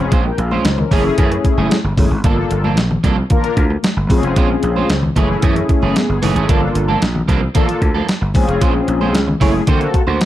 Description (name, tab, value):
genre	early-eighties boogie funk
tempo	113 BPM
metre	4/4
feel	straight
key	unclear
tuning	A4 = 440 Hz
part	mellow synth brass	accompaniment	0.0-10.0 s	A3 to Ab5	-19 LUFS	left 3 dB	chorus
part	electric guitar at the edge of break-up	riff	0.0-10.2 s	E3 to C#5	-22 LUFS	right 6 dB	analog chorus
part	gritty slap bass	bass	0.0-10.2 s	F1 to D3	-18 LUFS	equal	overdrive
part	crisp 8-bit digital drum machine	drums	0.1-10.3 s	hi-hat, kick drum, snare drum	-16 LUFS	equal	none
part	congas	percussion	0.1-10.3 s	none	-25 LUFS	left 3 dB	none
room	light reverb, digital ambience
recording	dark, warm production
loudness	-13 LUFS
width	side -13 dB against mid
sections	0.0-10.3 A section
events	none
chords	0.0 Bbm9; 0.9 F#m9; 2.2 Gm9; 4.1 Bbm9; 5.2 F#m9; 6.5 Gm9; 8.3 Bbm9; 9.4 F#m9; 9.7 D7b13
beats	| 0.12 0.65 1.18 1.71 | 2.24 2.77 3.30 3.83 | 4.37 4.90 5.43 5.96 | 6.49 7.02 7.55 8.08 | 8.61 9.14 9.68 10.21